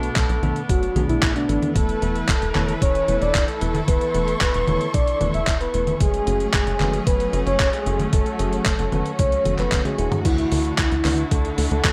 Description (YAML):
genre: italo disco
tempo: 113 BPM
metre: 4/4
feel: straight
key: F# minor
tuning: A4 = 436 Hz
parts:
  - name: soft octave-layered synth lead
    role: melody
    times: 0.0-11.9 s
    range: D4 to E5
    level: -26 LUFS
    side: equal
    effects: chorus, tremolo, digital delay
  - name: clear studio string section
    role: sustained chords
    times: 0.0-11.9 s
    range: D3 to C#6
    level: -32 LUFS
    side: equal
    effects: none
  - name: bell-like tine electric piano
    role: stabs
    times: 0.0-11.8 s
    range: B2 to C#5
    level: -32 LUFS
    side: equal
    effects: none
  - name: tight sequencer bass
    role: bass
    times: 0.0-11.9 s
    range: E1 to D2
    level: -27 LUFS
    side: equal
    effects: none
  - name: dusty soul sampler-style drum kit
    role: drums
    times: 0.0-11.9 s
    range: congas, crash cymbal, handclaps, hi-hat, toms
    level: -28 LUFS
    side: equal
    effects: overdrive, small room ambience, gated reverb
  - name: electronic kick drum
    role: drums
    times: 0.2-11.9 s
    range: none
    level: -24 LUFS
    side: equal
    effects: small room ambience
room: light reverb, digital ambience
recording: none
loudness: -21 LUFS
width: mono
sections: 0.0-11.9 A section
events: drum fill 9.7-10.3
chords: 0.0 Bm7; 1.8 Esus4; 6.0 F#madd9; 10.3 Dadd9